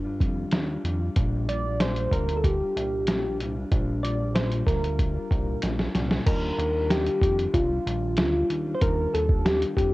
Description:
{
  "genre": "indie pop, bedroom pop",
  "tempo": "94 BPM",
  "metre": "4/4",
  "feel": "straight",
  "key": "Bb major",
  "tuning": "A4 = 436 Hz",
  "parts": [
    { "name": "mellow electric guitar", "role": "accompaniment", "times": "0.0-9.9 s", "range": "Bb2 to F4", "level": "-32 LUFS", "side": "left 2 dB", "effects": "wide subtle chorus, warbly pitch drift, cassette tape" },
    { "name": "chorused synth bass", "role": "bass", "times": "0.0-9.9 s", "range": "Bb1 to G2", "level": "-29 LUFS", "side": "equal", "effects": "transformer saturation" },
    { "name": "lo-fi sampler-style drum kit", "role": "drums", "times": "0.2-9.9 s", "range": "crash cymbal, hi-hat, kick drum, snare drum", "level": "-26 LUFS", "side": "equal", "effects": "cassette tape" },
    { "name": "soft electric-piano-like synth keys", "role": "melody", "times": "1.5-9.9 s", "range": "F4 to D5", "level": "-27 LUFS", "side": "equal", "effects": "analog chorus, cassette tape" }
  ],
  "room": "light reverb",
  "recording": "home recording on cassette",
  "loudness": "-23 LUFS",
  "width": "side -19 dB against mid",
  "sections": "0.0-6.3 A section; 6.3-9.9 B section",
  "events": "drum fill 5.6-6.3",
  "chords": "0.0 Ebmaj9; 1.2 Bb6"
}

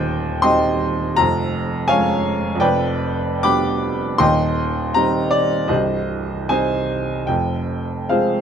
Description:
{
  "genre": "classical, romantic character piece for solo piano",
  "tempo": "68-86 BPM",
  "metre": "4/4",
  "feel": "rubato",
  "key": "C minor",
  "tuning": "A4 = 440 Hz",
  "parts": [
    { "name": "clear baby grand piano", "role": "solo", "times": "0.0-8.4 s", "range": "C1 to D6", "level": "-17 LUFS", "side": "equal", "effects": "none" }
  ],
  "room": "little or no reverb",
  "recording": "close, detailed microphones",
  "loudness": "-17 LUFS",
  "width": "side -8 dB against mid",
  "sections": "0.0-8.4 A section",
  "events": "none",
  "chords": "0.0 Cm/Eb; 1.2 Db/F; 2.6 G7/F; 4.2 Cm/Eb; 5.7 Cm; 7.3 Fm"
}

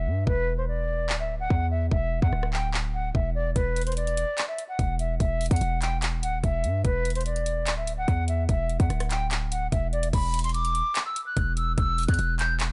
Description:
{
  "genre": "hip hop, trap",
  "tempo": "146 BPM",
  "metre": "4/4",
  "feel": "half-time",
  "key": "unclear",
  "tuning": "A4 = 440 Hz",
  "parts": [
    { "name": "reedy concert flute", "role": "melody", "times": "0.0-12.6 s", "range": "B4 to G6", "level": "-32 LUFS", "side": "equal", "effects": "low-pass filter" },
    { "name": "hard-hitting 808-style bass", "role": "bass", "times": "0.0-12.7 s", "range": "D1 to G2", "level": "-30 LUFS", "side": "equal", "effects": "none" },
    { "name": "trap drum kit", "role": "drums", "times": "0.3-12.7 s", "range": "crash cymbal, handclaps, hi-hat, kick drum, rim click", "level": "-30 LUFS", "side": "equal", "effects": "none" }
  ],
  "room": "digital ambience",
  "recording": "nothing above 10.9 kHz",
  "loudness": "-26 LUFS",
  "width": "mono",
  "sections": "0.0-10.1 A section; 10.1-12.7 B section",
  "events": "break 0.0-3.6",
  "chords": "0.3 Dadd9; 3.6 N.C.; 6.8 Dadd9; 10.1 N.C."
}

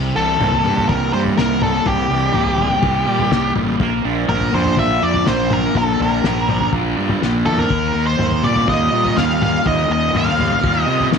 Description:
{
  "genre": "psychedelic rock",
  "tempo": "123 BPM",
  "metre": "4/4",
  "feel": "straight",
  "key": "unclear",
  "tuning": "A4 = 441 Hz",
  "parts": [
    { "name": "fuzz guitar", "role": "riff", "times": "0.0-11.2 s", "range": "C3 to G4", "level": "-19 LUFS", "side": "equal", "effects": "distortion, phaser" },
    { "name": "fuzz fingered electric bass", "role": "bass", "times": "0.0-11.2 s", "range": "A1 to C3", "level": "-22 LUFS", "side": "right 1 dB", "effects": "overdrive" },
    { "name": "octave-fuzz lead guitar", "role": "melody", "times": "0.2-11.1 s", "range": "G4 to F5", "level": "-19 LUFS", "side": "equal", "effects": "distortion, slapback echo" },
    { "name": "cloth-damped thuddy drum kit", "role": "drums", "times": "0.4-11.2 s", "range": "kick drum, snare drum, toms", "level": "-22 LUFS", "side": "left 4 dB", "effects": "none" }
  ],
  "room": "light reverb, small room ambience",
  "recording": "1960s-style stereo",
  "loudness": "-14 LUFS",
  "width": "side -6 dB against mid",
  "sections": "0.0-11.2 A section",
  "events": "drum fill 7.2-7.7",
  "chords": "0.0 C7; 3.8 Bb; 7.7 Ebadd9"
}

